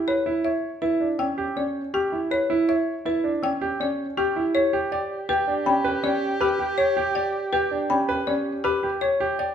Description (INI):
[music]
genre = classical, minimalist pattern music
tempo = 161 BPM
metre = 6/4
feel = straight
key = E dorian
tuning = A4 = 440 Hz
[part]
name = warm baby grand piano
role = arpeggios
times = 0.0-9.5 s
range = C#4 to D5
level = -24 LUFS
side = right 3 dB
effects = none
[part]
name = folk marimba with medium hard mallets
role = melody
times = 0.1-9.5 s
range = G4 to B5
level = -26 LUFS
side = left 5 dB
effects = none
[part]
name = small celesta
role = arpeggios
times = 0.8-8.9 s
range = E5 to E6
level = -30 LUFS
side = left 3 dB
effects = none
[part]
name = warm soprano saxophone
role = second line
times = 4.5-8.8 s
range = G4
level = -29 LUFS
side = right 3 dB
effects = none
[sound]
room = wet large studio reverb, RT60 1.1 s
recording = heard from further back in the room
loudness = -21 LUFS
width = side -8 dB against mid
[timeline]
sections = 0.0-9.5 A section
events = none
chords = 0.0 Em; 4.5 G